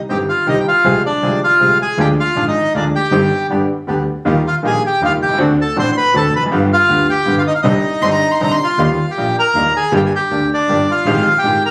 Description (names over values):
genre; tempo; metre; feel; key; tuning
tango; 158 BPM; 3/4; rubato; C minor; A4 = 441 Hz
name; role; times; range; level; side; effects
bandoneon; melody; 0.1-11.7 s; D4 to C6; -17 LUFS; equal; plate reverb
clear grand piano; accompaniment; 0.1-11.6 s; G1 to Ab4; -21 LUFS; equal; none
bandoneon; stabs; 0.1-11.6 s; G3 to Ab4; -26 LUFS; equal; none
warm double bass; bass; 0.1-11.6 s; F1 to Eb2; -24 LUFS; equal; none
warm violin; second line; 8.0-8.8 s; Bb5 to C6; -21 LUFS; equal; none
room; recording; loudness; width
moderate studio ambience, RT60 0.5 s; recorded on a phone in the room, club ambience, compression; -15 LUFS; mono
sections
0.0-8.8 A section; 8.8-11.7 B section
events
none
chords
0.0 Cm; 0.8 Fm/C; 2.0 Ddim; 3.1 Cm/G; 3.5 G; 4.3 Ebadd9; 5.4 D7; 6.5 G7; 7.6 Cmadd9; 8.8 Ebadd9; 9.9 Gm; 11.1 Fmadd9/Ab